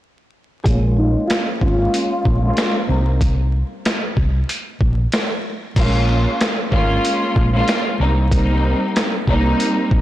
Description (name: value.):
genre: hip hop, boom-bap hip-hop.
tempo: 94 BPM.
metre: 4/4.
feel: swing 57% on 16ths.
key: Bb dorian.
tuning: A4 = 440 Hz.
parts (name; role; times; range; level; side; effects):
mellow electric guitar; melody; 0.6-2.1 s; Eb4 to Ab4; -23 LUFS; left 1 dB; phaser, high-pass filter, low-pass filter, ping-pong delay.
warm studio string section; accompaniment; 0.7-10.0 s; G3 to F4; -20 LUFS; equal; high-pass filter, low-pass filter.
hollow-body short-scale fingered electric bass; bass; 0.7-10.0 s; Ab1 to C2; -18 LUFS; equal; transformer saturation.
boom bap sampler-style drum kit; drums; 0.7-10.0 s; crash cymbal, hi-hat, kick drum, snare drum; -20 LUFS; equal; none.
room: light reverb.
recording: blown-out, overdriven recording, vinyl crackle, overdrive.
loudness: -16 LUFS.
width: side -14 dB against mid.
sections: 0.7-5.8 A section; 5.8-10.0 B section.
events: filter sweep 0.7-5.8; break 3.2-5.8.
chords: 0.7 Bbm7; 2.9 C7(no3); 5.8 Bbm7; 8.0 Cm7.